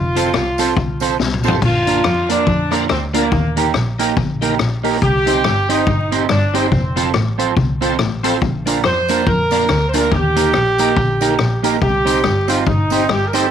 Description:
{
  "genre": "ska",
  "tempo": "141 BPM",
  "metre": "4/4",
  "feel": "swing 58% on 8ths",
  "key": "Bb major",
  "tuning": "A4 = 440 Hz",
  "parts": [
    { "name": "mellow horn section", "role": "melody", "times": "0.0-13.5 s", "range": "Bb3 to C5", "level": "-18 LUFS", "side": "right 1 dB", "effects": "none" },
    { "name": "semi-hollow electric guitar", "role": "riff", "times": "0.0-13.2 s", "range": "F2 to F3", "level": "-26 LUFS", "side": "left 6 dB", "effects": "lush chorus" },
    { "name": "dark double bass", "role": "bass", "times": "0.0-13.5 s", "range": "F1 to F2", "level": "-21 LUFS", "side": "equal", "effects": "transformer saturation" },
    { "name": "electric guitar at the edge of break-up", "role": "accompaniment", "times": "0.2-13.5 s", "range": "Bb3 to C5", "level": "-20 LUFS", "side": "right 10 dB", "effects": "analog chorus" },
    { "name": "bright tonewheel organ", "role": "stabs", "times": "0.2-13.5 s", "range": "C4 to C5", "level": "-24 LUFS", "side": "left 11 dB", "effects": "chorus vibrato, slow rotary speaker" },
    { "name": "street-band drum kit", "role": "drums", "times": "0.2-13.4 s", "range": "crash cymbal, hi-hat, kick drum, rim click, snare drum, toms", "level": "-20 LUFS", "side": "left 3 dB", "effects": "none" },
    { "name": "tambourine", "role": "percussion", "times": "0.2-1.5, 8.7-13.4 s", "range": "none", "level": "-34 LUFS", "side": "right 16 dB", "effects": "tape echo" }
  ],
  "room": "light reverb, small room ambience",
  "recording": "1960s-style stereo with parts hard left and right, vinyl crackle",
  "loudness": "-14 LUFS",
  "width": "side -9 dB against mid",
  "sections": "0.0-1.6 A section; 1.6-13.5 A section",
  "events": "drum fill 1.2-1.6",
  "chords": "0.0 F; 1.6 Bb; 3.3 Eb; 5.0 Cm; 6.7 F; 8.4 Bb; 10.1 Eb; 11.8 Cm"
}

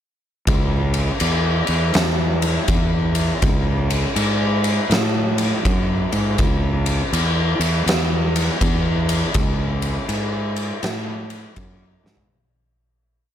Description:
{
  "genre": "stoner and doom metal",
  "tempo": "81 BPM",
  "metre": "4/4",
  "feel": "swing 64% on 8ths",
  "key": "C# minor",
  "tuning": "A4 = 440 Hz",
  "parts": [
    { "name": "fuzz fingered electric bass", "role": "bass", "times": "0.5-12.3 s", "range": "C#2 to A2", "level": "-20 LUFS", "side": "equal", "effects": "overdrive" },
    { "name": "oversized low-tuned drum kit", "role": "drums", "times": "0.5-12.3 s", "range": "kick drum, ride cymbal, snare drum, toms", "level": "-20 LUFS", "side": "equal", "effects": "none" }
  ],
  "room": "little or no reverb",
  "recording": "none",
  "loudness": "-17 LUFS",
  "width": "side -10 dB against mid",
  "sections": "0.5-12.3 riff",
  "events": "fade-out 9.4-12.3; drum fill 11.9-12.3",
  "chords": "none"
}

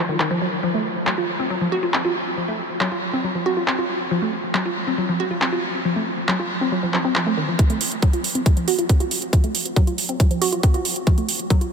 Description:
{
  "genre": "psychedelic trance",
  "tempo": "138 BPM",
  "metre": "4/4",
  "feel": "straight",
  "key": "unclear",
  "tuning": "A4 = 440 Hz",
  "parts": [
    { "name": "woody wave-folded pluck", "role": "riff", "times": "0.0-11.7 s", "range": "Eb3 to Gb4", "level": "-22 LUFS", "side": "equal", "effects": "chorus, auto-pan, cassette tape, sidechain pumping, analog delay" },
    { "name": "drum and bass drum kit", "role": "drums", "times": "0.2-11.7 s", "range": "handclaps, hi-hat", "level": "-24 LUFS", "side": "right 1 dB", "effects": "overdrive, low-pass filter on snare, low-pass filter on hats" },
    { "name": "electronic kick drum", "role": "drums", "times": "7.6-11.6 s", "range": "none", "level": "-16 LUFS", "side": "equal", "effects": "overdrive" }
  ],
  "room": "wet huge ambient reverb, RT60 6.9 s",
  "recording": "dreamy mix soaked in reverb",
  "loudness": "-19 LUFS",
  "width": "side -6 dB against mid",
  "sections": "0.0-7.6 A section; 7.6-11.7 B section",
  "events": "filter sweep on synth arpeggio sound 0.0-7.6, 7.6-11.7; build-up 7.6-11.7",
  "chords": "none"
}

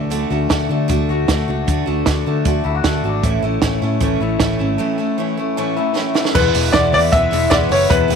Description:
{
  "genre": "jangly indie pop",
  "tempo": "154 BPM",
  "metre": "4/4",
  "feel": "straight",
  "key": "A major",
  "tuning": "A4 = 440 Hz",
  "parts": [
    { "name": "picked steel-string acoustic guitar", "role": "accompaniment", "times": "0.0-8.2 s", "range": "A2 to F#4", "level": "-22 LUFS", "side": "right 12 dB", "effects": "none" },
    { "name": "electric guitar through a small old amp", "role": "arpeggios", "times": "0.0-8.2 s", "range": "E2 to F#4", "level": "-21 LUFS", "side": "left 14 dB", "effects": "phaser" },
    { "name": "vintage muted fingered electric bass", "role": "bass", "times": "0.0-8.2 s", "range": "E1 to D3", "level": "-21 LUFS", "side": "equal", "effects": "none" },
    { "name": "compact cocktail drum kit", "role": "drums", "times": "0.1-8.2 s", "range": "crash cymbal, hi-hat, kick drum, snare drum", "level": "-19 LUFS", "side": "right 3 dB", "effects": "none" },
    { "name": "warm upright piano", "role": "melody", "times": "6.3-8.2 s", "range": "B4 to E5", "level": "-15 LUFS", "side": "left 2 dB", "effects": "none" }
  ],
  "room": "light reverb",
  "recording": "1960s-style stereo with parts hard left and right",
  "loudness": "-15 LUFS",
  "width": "side -6 dB against mid",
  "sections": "0.0-6.4 A section; 6.4-8.2 B section",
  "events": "drum fill 6.0-6.4",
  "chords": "0.0 D; 3.2 A; 6.4 E"
}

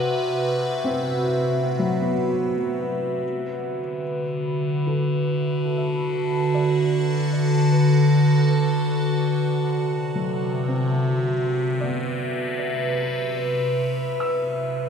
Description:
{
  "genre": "ambient",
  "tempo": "free time",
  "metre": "none",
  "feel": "none",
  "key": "unclear",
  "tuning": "A4 = 440 Hz",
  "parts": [
    { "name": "evolving wavetable pad", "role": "sustained chords", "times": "0.0-14.9 s", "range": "C3 to A5", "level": "-21 LUFS", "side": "equal", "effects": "phaser, built-in reverb" },
    { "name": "felt-muted upright piano", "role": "arpeggios", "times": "0.0-14.9 s", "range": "F#3 to E6", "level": "-32 LUFS", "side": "left 1 dB", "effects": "ping-pong delay" },
    { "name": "analog drone", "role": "drone", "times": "0.0-14.9 s", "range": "F#4 to B4", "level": "-29 LUFS", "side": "right 2 dB", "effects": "chorus" }
  ],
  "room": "wet cathedral reverb, RT60 7.1 s",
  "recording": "dark, warm production",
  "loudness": "-20 LUFS",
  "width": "side -6 dB against mid",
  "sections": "0.0-14.9 A section",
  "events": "fade-out on felt piano 0.0-14.9",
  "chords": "0.0 Cmaj7; 3.2 D; 9.4 Cmaj7"
}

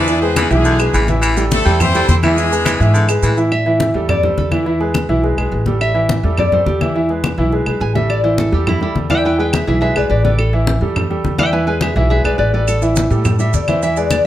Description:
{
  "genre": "latin, salsa",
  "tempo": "210 BPM",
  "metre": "4/4",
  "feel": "straight",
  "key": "A minor",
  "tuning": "A4 = 440 Hz",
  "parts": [
    { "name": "brilliant horn section", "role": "melody", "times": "0.0-3.1 s", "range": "G#3 to D5", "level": "-19 LUFS", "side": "left 1 dB", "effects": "none" },
    { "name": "raspy baritone saxophone", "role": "second line", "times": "0.0-3.4 s", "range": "D3 to G3", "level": "-20 LUFS", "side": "left 1 dB", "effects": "none" },
    { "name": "clear concert grand piano", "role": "accompaniment", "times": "0.0-14.2 s", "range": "E3 to E5", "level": "-18 LUFS", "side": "right 1 dB", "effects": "none" },
    { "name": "upright bass", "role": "bass", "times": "0.0-14.2 s", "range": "A1 to A2", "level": "-18 LUFS", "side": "equal", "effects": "none" },
    { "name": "congas", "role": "percussion", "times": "0.1-14.2 s", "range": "none", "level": "-21 LUFS", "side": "left 2 dB", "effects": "none" },
    { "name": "maracas", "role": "percussion", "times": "0.1-3.5, 12.7-14.3 s", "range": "none", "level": "-30 LUFS", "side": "right 7 dB", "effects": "none" },
    { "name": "claves", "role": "percussion", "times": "0.4-14.3 s", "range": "none", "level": "-26 LUFS", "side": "right 1 dB", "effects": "none" },
    { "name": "nylon-string guitar", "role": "melody", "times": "3.5-14.2 s", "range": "E4 to G#5", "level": "-19 LUFS", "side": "left 1 dB", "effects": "none" }
  ],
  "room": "moderate large studio reverb, RT60 1.0 s",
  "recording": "none",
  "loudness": "-13 LUFS",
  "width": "side -13 dB against mid",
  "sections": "0.0-3.5 A section; 3.5-14.3 B section",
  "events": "nylon-string guitar solo 3.5-14.3",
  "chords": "0.1 E7; 1.2 Am7; 2.4 E7; 3.5 A5; 4.7 E; 5.8 A5; 7.0 E; 8.1 A5; 9.2 E; 10.4 A5; 11.5 E; 12.7 A5"
}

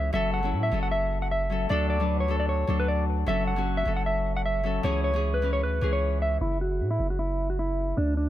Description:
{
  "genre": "hip hop, trap",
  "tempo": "153 BPM",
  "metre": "4/4",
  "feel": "half-time",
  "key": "F# minor",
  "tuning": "A4 = 440 Hz",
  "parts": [
    { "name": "mellow electric guitar", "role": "melody", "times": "0.0-8.3 s", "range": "D4 to F#5", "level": "-28 LUFS", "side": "equal", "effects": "low-pass filter, ping-pong delay" },
    { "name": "Celtic harp", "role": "accompaniment", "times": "0.0-8.3 s", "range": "E3 to B4", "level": "-31 LUFS", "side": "left 3 dB", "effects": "low-pass filter" },
    { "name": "long sustained 808-style bass", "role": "bass", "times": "0.0-8.3 s", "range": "F#1 to A2", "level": "-28 LUFS", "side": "equal", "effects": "none" }
  ],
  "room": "little or no reverb",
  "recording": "none",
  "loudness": "-24 LUFS",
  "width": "side -13 dB against mid",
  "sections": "0.0-6.4 A section; 6.4-8.3 B section",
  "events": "filter sweep 6.4-8.3",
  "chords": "0.1 F#m; 1.7 D; 3.3 F#m; 4.8 C#m; 6.4 F#5"
}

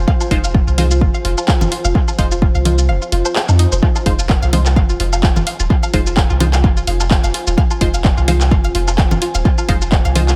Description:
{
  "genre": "minimal techno",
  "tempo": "128 BPM",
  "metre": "4/4",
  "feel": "swing 56% on 16ths",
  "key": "F minor",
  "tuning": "A4 = 440 Hz",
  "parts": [
    { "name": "punchy sub bass", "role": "bass", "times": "0.0-10.4 s", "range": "Eb1 to F2", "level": "-18 LUFS", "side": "equal", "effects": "sidechain pumping" },
    { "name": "deep dark ambient pad", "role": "texture", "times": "0.0-10.4 s", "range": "F4 to Ab5", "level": "-28 LUFS", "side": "equal", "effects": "chorus, built-in reverb, sidechain pumping" },
    { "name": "string-like resonator pluck", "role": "riff", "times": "0.1-10.3 s", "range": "Eb4 to F5", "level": "-27 LUFS", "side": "equal", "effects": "chorus, sidechain pumping, dub echo" },
    { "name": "electronic kick drum", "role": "drums", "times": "0.1-10.0 s", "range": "none", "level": "-16 LUFS", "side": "equal", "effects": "overdrive" },
    { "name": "punchy analog drum machine", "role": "drums", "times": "0.2-10.4 s", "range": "handclaps, hi-hat, shaker", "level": "-25 LUFS", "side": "equal", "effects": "dub echo" },
    { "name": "woodblock and congas", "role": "percussion", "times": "0.2-10.3 s", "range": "none", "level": "-25 LUFS", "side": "equal", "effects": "dub echo" },
    { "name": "filtered dub chord stab", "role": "stabs", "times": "0.3-10.2 s", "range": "Ab3 to C5", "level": "-28 LUFS", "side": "equal", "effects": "phaser, dub echo" }
  ],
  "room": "digital ambience",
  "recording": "echo-heavy mix",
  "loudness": "-15 LUFS",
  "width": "mono",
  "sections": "0.0-3.8 A section; 3.8-10.4 B section",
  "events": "kick drops out 2.9-3.8; drop 3.8-10.4",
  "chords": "0.0 Fm7"
}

